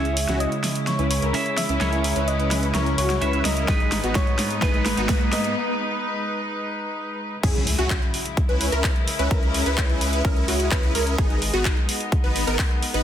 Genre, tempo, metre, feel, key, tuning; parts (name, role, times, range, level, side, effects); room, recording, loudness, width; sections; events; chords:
EDM, festival progressive house; 128 BPM; 4/4; straight; A4 = 440 Hz
soft struck synth lead; melody; 0.0-5.6 s; B4 to E5; -29 LUFS; left 2 dB; chorus, digital delay
twelve-string electric guitar; accompaniment; 0.0-5.5 s; G#2 to E5; -27 LUFS; right 3 dB; sidechain pumping
rich chamber string section; sustained chords; 0.0-13.0 s; C#3 to B4; -30 LUFS; left 2 dB; sidechain pumping
supersaw chords; riff; 0.0-13.0 s; B3 to B4; -27 LUFS; equal; ensemble chorus, sidechain pumping, low-pass filter, digital delay
saturated sub bass; bass; 0.0-13.0 s; G#1 to C#2; -27 LUFS; equal; sidechain pumping
riser and impact; sound effects; 3.1-9.3 s; -33 LUFS; equal
big-room dance drum kit; drums; 0.1-13.0 s; crash cymbal, handclaps, hi-hat, snare drum; -27 LUFS; equal; overdrive, studio reverb
electronic kick drum; drums; 3.7-12.7 s; -22 LUFS; equal; overdrive, studio reverb
wide unison pluck; arpeggios; 7.4-13.0 s; F#4 to B4; -30 LUFS; right 1 dB; sidechain pumping, digital delay
light reverb, digital ambience; dense, heavily limited modern master; -20 LUFS; side -10 dB against mid
0.0-7.4 A section; 7.4-13.0 B section
build-up 0.0-7.4; drum fill 0.0-5.6; filter sweep on supersaw synth 0.0-7.4; break 5.6-7.4; drop 7.4-13.0; impact 7.4-9.3
0.0 C#m; 3.7 G#m; 7.4 C#m; 11.2 G#m